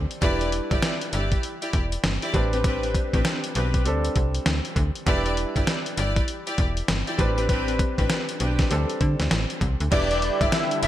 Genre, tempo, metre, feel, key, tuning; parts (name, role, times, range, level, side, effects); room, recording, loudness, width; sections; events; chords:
R&B, new jack swing; 99 BPM; 4/4; swing 62% on 16ths; E minor; A4 = 441 Hz
clear concert grand piano; accompaniment; 0.0-10.9 s; G3 to D5; -31 LUFS; right 2 dB
slap-like FM bass; bass; 0.0-10.9 s; E1 to D3; -26 LUFS; equal
dusty soul sampler-style drum kit; drums; 0.1-10.9 s; crash cymbal, hi-hat, kick drum, snare drum; -25 LUFS; equal; gated reverb
rich studio string section; stabs; 0.2-10.9 s; C4 to D5; -29 LUFS; left 2 dB
wide unison lead; melody; 9.9-10.9 s; D5 to E5; -24 LUFS; equal
lush unison pad; sustained chords; 9.9-10.9 s; D3 to G4; -30 LUFS; equal; chorus
moderate plate reverb, RT60 2.4 s; bright 1980s-style digital production; -21 LUFS; side -12 dB against mid
0.0-9.9 A section
0.2 Em7; 2.3 Am11; 3.9 D7sus4; 5.1 Em7; 7.2 Am11; 8.7 D7sus4; 9.9 Em7